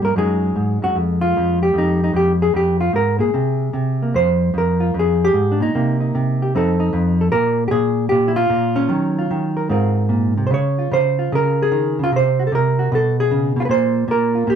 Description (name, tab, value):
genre	solo jazz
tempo	151 BPM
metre	4/4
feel	swing 66% on 8ths, rubato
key	F minor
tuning	A4 = 441 Hz
part	hollow-body jazz guitar	solo	0.0-14.6 s	F2 to Db5	-15 LUFS	right 1 dB	none
room	moderate studio reverb, RT60 0.7 s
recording	none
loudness	-15 LUFS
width	side -8 dB against mid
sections	0.0-4.1 A section; 4.1-14.6 B section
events	none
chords	0.2 Gbsus2; 1.0 Fmadd9; 3.3 Abadd9/C; 4.1 Fmadd9; 5.7 Cm7; 6.5 F7; 7.3 N.C.; 8.9 Ebm9; 9.7 Ab69; 10.5 Dbmaj9; 12.1 F#(b5, no3)/C; 12.9 Db7(no3)/Cb; 13.7 Bb5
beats	0.17 0.56 | 0.95 1.35 1.74 2.14 | 2.54 2.94 3.34 3.74 | 4.15 4.55 4.95 5.35 | 5.75 6.14 6.54 6.93 | 7.33 7.72 8.12 8.51 | 8.91 9.31 9.71 10.11 | 10.51 10.91 11.31 11.71 | 12.11 12.51 12.90 13.29 | 13.69 14.09 14.48